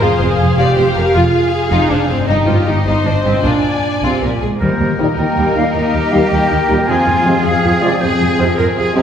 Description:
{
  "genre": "cinematic, heroic adventure film score",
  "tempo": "106 BPM (dotted quarters)",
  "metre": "12/8",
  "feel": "straight",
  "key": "Eb major from 4.6 s",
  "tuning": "A4 = 440 Hz",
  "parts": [
    { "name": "clear symphonic violin section", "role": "melody", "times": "0.0-9.0 s", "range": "G4 to D5", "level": "-24 LUFS", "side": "left 4 dB", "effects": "none" },
    { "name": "warm symphonic violin section", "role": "second line", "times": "0.0-9.0 s", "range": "C4 to Ab5", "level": "-21 LUFS", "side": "left 3 dB", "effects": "none" },
    { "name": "rich symphonic viola section", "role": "accompaniment", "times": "0.0-9.0 s", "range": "C3 to Ab4", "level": "-18 LUFS", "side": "right 2 dB", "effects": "none" },
    { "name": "concert harp", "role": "arpeggios", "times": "0.0-9.0 s", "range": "F2 to F5", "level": "-23 LUFS", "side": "left 4 dB", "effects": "none" },
    { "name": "clear symphonic cello section", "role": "bass", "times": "0.0-9.0 s", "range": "F2 to Bb4", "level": "-20 LUFS", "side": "right 2 dB", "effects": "none" },
    { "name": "clear symphonic double bass section", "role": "bass", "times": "0.0-9.0 s", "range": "F1 to F2", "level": "-19 LUFS", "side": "right 2 dB", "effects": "none" },
    { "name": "clear clarinet", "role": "second line", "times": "4.6-9.0 s", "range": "Bb3 to C4", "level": "-24 LUFS", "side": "left 1 dB", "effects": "none" },
    { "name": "clear oboe", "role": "second line", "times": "4.6-9.0 s", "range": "Ab4 to Bb4", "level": "-23 LUFS", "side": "right 2 dB", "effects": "none" },
    { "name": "mellow silver concert flute", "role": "second line", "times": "4.6-8.9 s", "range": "Bb4 to Ab5", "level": "-19 LUFS", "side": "left 2 dB", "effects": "none" },
    { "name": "mellow French horn section", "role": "sustained chords", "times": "5.0-9.0 s", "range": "G3 to Eb4", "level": "-22 LUFS", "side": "left 2 dB", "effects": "none" },
    { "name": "warm trombone section", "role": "sustained chords", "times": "5.0-9.0 s", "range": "Bb2 to F3", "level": "-23 LUFS", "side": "right 3 dB", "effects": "none" }
  ],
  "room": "wet scoring stage reverb, RT60 1.9 s",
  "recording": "heard from further back in the room",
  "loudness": "-12 LUFS",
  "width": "side -8 dB against mid",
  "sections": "0.0-4.6 A section; 4.6-9.0 B section",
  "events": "none",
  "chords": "0.0 Fm; 2.3 Cm/G; 3.4 Bb7; 4.6 Eb; 6.9 Fm"
}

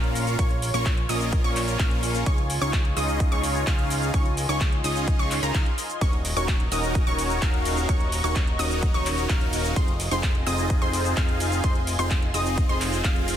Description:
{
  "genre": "EDM, festival progressive house",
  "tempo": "128 BPM",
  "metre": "4/4",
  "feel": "straight",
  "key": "Bb minor",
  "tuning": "A4 = 440 Hz",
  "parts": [
    { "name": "lush unison pad", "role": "sustained chords", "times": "0.0-13.4 s", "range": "F4 to Db6", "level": "-33 LUFS", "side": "left 1 dB", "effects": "chorus, phaser, sidechain pumping" },
    { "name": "wide unison pluck", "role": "arpeggios", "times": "0.0-13.4 s", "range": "Bb5 to F6", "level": "-32 LUFS", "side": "equal", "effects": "sidechain pumping, ping-pong delay" },
    { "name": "supersaw chords", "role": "riff", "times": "0.0-13.4 s", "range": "Bb3 to F5", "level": "-28 LUFS", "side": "equal", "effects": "sidechain pumping, ping-pong delay" },
    { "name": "fat analog bass", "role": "bass", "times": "0.0-13.4 s", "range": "Eb1 to Db2", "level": "-29 LUFS", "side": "equal", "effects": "sidechain pumping" },
    { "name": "house drum kit", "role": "drums", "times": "0.0-13.4 s", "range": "cabasa, handclaps, hi-hat, ride cymbal", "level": "-31 LUFS", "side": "equal", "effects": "studio reverb" },
    { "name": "electronic kick drum", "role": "drums", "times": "0.4-13.1 s", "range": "none", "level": "-23 LUFS", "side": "equal", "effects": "studio reverb" }
  ],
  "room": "little or no reverb",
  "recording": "dense, heavily limited modern master",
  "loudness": "-21 LUFS",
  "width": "side -10 dB against mid",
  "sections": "0.0-13.4 A section",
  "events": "none",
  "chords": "0.0 Bbm; 2.3 Dbadd9; 6.0 Ebm7; 9.8 Fm7"
}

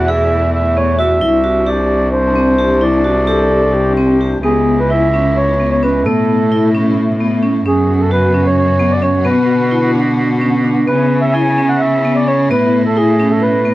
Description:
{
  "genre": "contemporary instrumental, chamber music in an uneven meter",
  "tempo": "262 BPM (eighths)",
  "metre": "7/8",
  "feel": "straight",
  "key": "C# phrygian",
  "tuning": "A4 = 440 Hz",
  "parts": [
    { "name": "mellow accordion", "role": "melody", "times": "0.0-13.7 s", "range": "G#4 to G#5", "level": "-15 LUFS", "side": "right 1 dB", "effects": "none" },
    { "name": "warm symphonic string section", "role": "sustained chords", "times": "0.0-13.7 s", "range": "B2 to F#4", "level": "-23 LUFS", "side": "left 2 dB", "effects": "none" },
    { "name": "bright cello", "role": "bass", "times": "0.0-13.7 s", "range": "C2 to C#3", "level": "-16 LUFS", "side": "equal", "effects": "none" },
    { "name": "vibraphone with hard mallets", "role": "arpeggios", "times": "0.1-13.7 s", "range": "B3 to G#4", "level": "-17 LUFS", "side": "equal", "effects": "analog delay" },
    { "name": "dark viola", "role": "second line", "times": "3.3-4.4 s", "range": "G4 to A4", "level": "-18 LUFS", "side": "left 3 dB", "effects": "none" }
  ],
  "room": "light reverb",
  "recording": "worn, warbling old tape, cassette tape, vinyl crackle, warbly pitch drift",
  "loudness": "-11 LUFS",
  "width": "side -16 dB against mid",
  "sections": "0.0-4.4 A section; 4.4-13.7 B section",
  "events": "none",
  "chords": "0.0 Esus4; 1.2 Csus2; 4.4 C#m7; 6.1 Asus2; 7.6 F#sus4; 9.3 Bm; 10.9 C#m7; 12.5 Asus2"
}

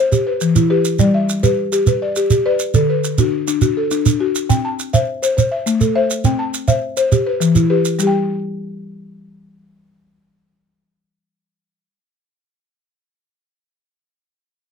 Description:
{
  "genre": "southern african traditional, mbira-style interlocking cycle",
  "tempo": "137 BPM (dotted quarters)",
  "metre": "12/8",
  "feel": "straight",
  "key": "G major",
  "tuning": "A4 = 444 Hz",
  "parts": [
    { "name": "buzzing marimba with soft mallets", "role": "arpeggios", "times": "0.0-12.8 s", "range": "D3 to A5", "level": "-16 LUFS", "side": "left 3 dB", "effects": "none" },
    { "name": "shekere", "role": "percussion", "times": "0.1-8.1 s", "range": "none", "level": "-16 LUFS", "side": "right 6 dB", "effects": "none" }
  ],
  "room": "moderate small room reverb, RT60 0.5 s",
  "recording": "none",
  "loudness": "-14 LUFS",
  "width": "side -6 dB against mid",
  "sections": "0.0-8.0 A section; 8.0-11.5 B section",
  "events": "none",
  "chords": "0.1 Em; 1.0 G; 2.7 D; 4.5 C; 5.4 Am; 6.2 C; 7.1 Em; 8.0 N.C."
}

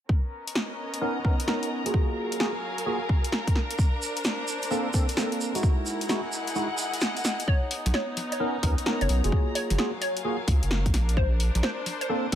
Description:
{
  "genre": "UK garage, two-step garage",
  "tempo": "130 BPM",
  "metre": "4/4",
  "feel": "swing 65% on 16ths",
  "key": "B major",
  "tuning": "A4 = 440 Hz",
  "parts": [
    { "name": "rich studio violin section", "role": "sustained chords", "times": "0.1-7.5 s", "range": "A#4 to A#5", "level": "-37 LUFS", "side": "right 1 dB", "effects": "sidechain pumping, low-pass filter" },
    { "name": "electronic kick drum", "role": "drums", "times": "0.1-12.4 s", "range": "none", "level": "-24 LUFS", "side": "equal", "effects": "none" },
    { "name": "dark chamber string section", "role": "texture", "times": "0.1-12.4 s", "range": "F#3 to A#5", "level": "-34 LUFS", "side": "left 1 dB", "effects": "sidechain pumping" },
    { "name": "punchy analog drum machine", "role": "drums", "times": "0.5-12.4 s", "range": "hi-hat, snare drum", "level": "-30 LUFS", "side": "equal", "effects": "overdrive" },
    { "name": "tine electric piano", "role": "stabs", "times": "1.0-12.4 s", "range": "G#3 to A#4", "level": "-30 LUFS", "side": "right 1 dB", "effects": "ensemble chorus, low-pass filter, ping-pong delay" },
    { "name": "tube shaker", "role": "percussion", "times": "3.8-7.5 s", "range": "none", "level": "-36 LUFS", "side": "right 4 dB", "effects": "none" },
    { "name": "hollow square pluck", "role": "melody", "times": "7.5-12.2 s", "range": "B#4 to C#5", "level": "-33 LUFS", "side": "left 1 dB", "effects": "wide subtle chorus, ping-pong delay" },
    { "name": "saturated sub bass", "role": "bass", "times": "7.9-12.4 s", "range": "F#1 to D#2", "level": "-24 LUFS", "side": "equal", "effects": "none" }
  ],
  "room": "light reverb, digital ambience",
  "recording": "none",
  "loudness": "-24 LUFS",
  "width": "side -11 dB against mid",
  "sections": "0.1-7.5 A section; 7.5-12.4 B section",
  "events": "filter sweep on violin section 0.1-7.5; kick drops out 6.6-7.5; drum fill 7.2",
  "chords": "0.1 Bmaj9; 1.9 F#maj9; 3.6 A#maj9; 5.6 Emaj9; 7.5 Bmaj9; 9.3 F#maj9; 10.9 A#add9"
}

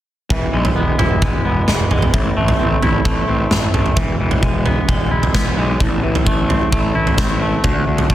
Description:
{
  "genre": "quiet-loud alternative rock",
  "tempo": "131 BPM",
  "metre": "4/4",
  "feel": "straight",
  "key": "E mixolydian",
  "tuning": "A4 = 435 Hz",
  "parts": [
    { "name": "twangy electric guitar", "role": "arpeggios", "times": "0.3-8.1 s", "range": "A2 to E4", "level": "-20 LUFS", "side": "left 1 dB", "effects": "wide subtle chorus" },
    { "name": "fuzz picked electric bass", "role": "bass", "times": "0.3-8.1 s", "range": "E1 to D2", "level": "-20 LUFS", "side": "equal", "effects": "overdrive" },
    { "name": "big rock drum kit", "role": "drums", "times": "0.3-8.1 s", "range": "kick drum, snare drum, toms", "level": "-17 LUFS", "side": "equal", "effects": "none" }
  ],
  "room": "light reverb",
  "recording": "dense, heavily limited modern master",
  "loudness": "-14 LUFS",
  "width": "side -13 dB against mid",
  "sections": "0.3-4.0 A section; 4.0-8.1 B section",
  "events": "none",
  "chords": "0.3 E; 2.1 Am; 4.0 E; 5.8 Am; 7.6 D5"
}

